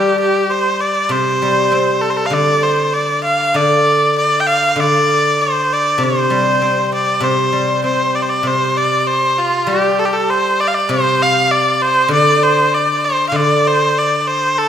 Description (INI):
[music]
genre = chinese traditional, Chinese chamber ensemble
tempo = 98 BPM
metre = 2/4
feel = straight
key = C zhi mode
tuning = A4 = 441 Hz
[part]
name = clear erhu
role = melody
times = 0.0-14.7 s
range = F4 to G5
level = -14 LUFS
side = equal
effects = none
[part]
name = guzheng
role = accompaniment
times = 0.0-14.7 s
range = C3 to C4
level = -18 LUFS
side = equal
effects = none
[sound]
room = wet recital hall reverb, RT60 1.7 s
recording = minimal, uncompressed stereo recording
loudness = -12 LUFS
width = side -9 dB against mid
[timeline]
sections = 0.0-8.5 A section; 8.5-14.7 B section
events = none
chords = none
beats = 0.51 | 1.11 1.72 | 2.33 2.94 | 3.56 4.18 | 4.79 5.40 | 6.00 6.62 | 7.22 7.83 | 8.45 9.07 | 9.68 10.29 | 10.90 11.51 | 12.12 12.72 | 13.34 13.96 | 14.57